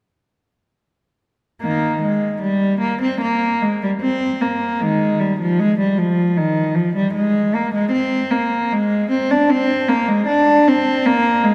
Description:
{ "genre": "classical, baroque-style suite movement for unaccompanied cello", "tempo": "76 BPM", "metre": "4/4", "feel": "rubato", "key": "unclear", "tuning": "A4 = 440 Hz", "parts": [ { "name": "warm cello", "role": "solo", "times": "1.6-11.5 s", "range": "Eb3 to D4", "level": "-18 LUFS", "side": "equal", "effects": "none" } ], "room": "wet church reverb, RT60 3.3 s", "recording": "none", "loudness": "-18 LUFS", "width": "mono", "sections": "1.6-11.5 A section", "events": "none", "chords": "none" }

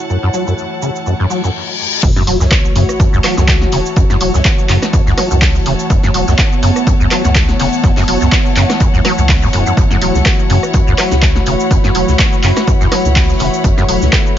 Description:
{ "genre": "acid house", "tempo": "124 BPM", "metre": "4/4", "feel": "swing 55% on 16ths", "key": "F# minor", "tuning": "A4 = 440 Hz", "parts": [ { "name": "warbly tape-like pad", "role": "sustained chords", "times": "0.0-14.4 s", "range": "E3 to A4", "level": "-20 LUFS", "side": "right 1 dB", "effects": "chorus, built-in reverb, sidechain pumping" }, { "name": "muted studio string section", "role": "texture", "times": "0.0-14.4 s", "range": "E4 to B5", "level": "-21 LUFS", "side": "left 2 dB", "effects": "sidechain pumping" }, { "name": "deep acid bass", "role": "riff", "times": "0.1-14.1 s", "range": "F#2 to F#3", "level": "-17 LUFS", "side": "equal", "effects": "tube saturation, ensemble chorus, ping-pong delay" }, { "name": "punchy analog drum machine", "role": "drums", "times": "0.1-14.3 s", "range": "crash cymbal, handclaps, hi-hat, rim click, shaker, snare drum", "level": "-18 LUFS", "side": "right 1 dB", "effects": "overdrive" }, { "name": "reverse cymbal and sub drop", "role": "sound effects", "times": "1.3-4.0 s", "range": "none", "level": "-20 LUFS", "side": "left 3 dB", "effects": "none" }, { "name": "saturated sub bass", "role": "bass", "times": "2.0-14.1 s", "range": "E1 to F#2", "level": "-15 LUFS", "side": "equal", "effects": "tube saturation, sidechain pumping" }, { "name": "electronic kick drum", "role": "drums", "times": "2.0-14.2 s", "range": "none", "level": "-13 LUFS", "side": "equal", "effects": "overdrive" }, { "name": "huge arena drum kit", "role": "drums", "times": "2.0-14.3 s", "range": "hi-hat, snare drum", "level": "-29 LUFS", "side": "left 3 dB", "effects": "none" } ], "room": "studio ambience", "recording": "nothing above 7.5 kHz", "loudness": "-10 LUFS", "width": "side -11 dB against mid", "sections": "0.0-2.0 A section; 2.0-14.4 B section", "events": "reverse cymbal 1.3-2.0; drop 2.0-14.4; impact 2.0-4.0", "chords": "0.0 F#m7" }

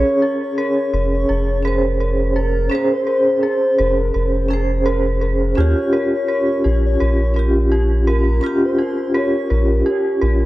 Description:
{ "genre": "trip hop", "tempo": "84 BPM", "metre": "4/4", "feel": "swing 54% on 16ths", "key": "Bb dorian", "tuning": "A4 = 440 Hz", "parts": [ { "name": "pure breathy sine lead", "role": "melody", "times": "0.0-9.6 s", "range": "Bb4 to Db5", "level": "-22 LUFS", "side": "left 1 dB", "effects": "lush chorus, tape echo" }, { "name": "vibraphone with medium mallets", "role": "accompaniment", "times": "0.0-10.5 s", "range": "Db4 to Db5", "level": "-19 LUFS", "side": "equal", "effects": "tremolo" }, { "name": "soft dub sub bass", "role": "bass", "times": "0.0-10.5 s", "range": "F1 to Eb2", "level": "-18 LUFS", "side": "equal", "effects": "none" }, { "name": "dark detuned synth bell", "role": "arpeggios", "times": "0.2-10.5 s", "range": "G4 to Bb4", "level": "-24 LUFS", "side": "right 1 dB", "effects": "chorus, phaser, vintage 12-bit sampler grit, analog delay" } ], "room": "little or no reverb", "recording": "dry, gritty hardware recording", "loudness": "-15 LUFS", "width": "side -17 dB against mid", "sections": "0.0-10.5 A section", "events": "none", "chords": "0.0 Bbm7; 5.6 Eb7 (rootless)" }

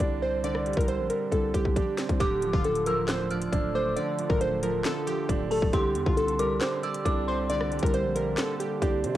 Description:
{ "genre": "hip hop, trap", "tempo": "136 BPM", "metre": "4/4", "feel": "half-time", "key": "D minor", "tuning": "A4 = 440 Hz", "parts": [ { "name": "glassy digital keys", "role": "melody", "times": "0.0-9.0 s", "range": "F4 to D5", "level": "-28 LUFS", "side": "equal", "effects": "chorus, cassette tape" }, { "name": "dark baby grand piano", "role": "accompaniment", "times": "0.0-9.2 s", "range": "D3 to D4", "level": "-32 LUFS", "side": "right 6 dB", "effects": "cassette tape" }, { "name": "growling 808-style bass", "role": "bass", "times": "0.0-9.1 s", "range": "D1 to C3", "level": "-32 LUFS", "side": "left 1 dB", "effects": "none" }, { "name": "trap drum kit", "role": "drums", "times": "0.0-9.2 s", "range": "handclaps, hi-hat, kick drum, rim click, snare drum", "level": "-29 LUFS", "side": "left 1 dB", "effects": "cassette tape" }, { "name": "dark detuned synth bell", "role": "second line", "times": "2.2-7.5 s", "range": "A5 to F6", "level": "-34 LUFS", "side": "left 1 dB", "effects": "chorus, phaser, cassette tape, tape echo" }, { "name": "hollow soft pad", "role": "sustained chords", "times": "2.2-9.2 s", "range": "D3 to A4", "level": "-38 LUFS", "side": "equal", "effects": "chorus, cassette tape" } ], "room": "light reverb, digital ambience", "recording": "home recording on cassette", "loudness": "-24 LUFS", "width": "side -13 dB against mid", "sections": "0.0-2.2 A section; 2.2-9.2 B section", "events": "drum fill 1.3-2.2", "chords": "0.0 Csus2; 2.2 Dm; 5.7 Csus2" }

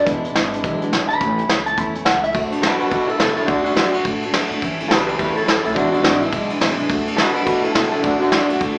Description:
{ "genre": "rockabilly", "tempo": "211 BPM", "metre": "4/4", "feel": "swing 61% on 8ths", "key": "unclear", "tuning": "A4 = 439 Hz", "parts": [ { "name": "electric guitar at the edge of break-up", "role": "melody", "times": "0.0-8.6 s", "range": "D4 to B5", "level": "-22 LUFS", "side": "equal", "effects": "none" }, { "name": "picked steel-string acoustic guitar", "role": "accompaniment", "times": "0.0-8.8 s", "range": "E2 to F#4", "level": "-26 LUFS", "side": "equal", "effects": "none" }, { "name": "upright bass", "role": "bass", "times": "0.0-8.8 s", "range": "E1 to D3", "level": "-32 LUFS", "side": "equal", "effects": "none" }, { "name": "vintage brush drum kit", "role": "drums", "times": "0.1-8.7 s", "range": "crash cymbal, hi-hat, kick drum, ride cymbal, snare drum", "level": "-22 LUFS", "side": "equal", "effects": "none" } ], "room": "moderate large studio reverb, RT60 1.2 s", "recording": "band playing live in one room, small speaker sound", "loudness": "-19 LUFS", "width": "mono", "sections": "0.0-2.3 A section; 2.3-8.8 B section", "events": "none", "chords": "0.1 E7; 1.2 A; 2.3 D; 4.6 A; 5.8 E7; 6.9 D" }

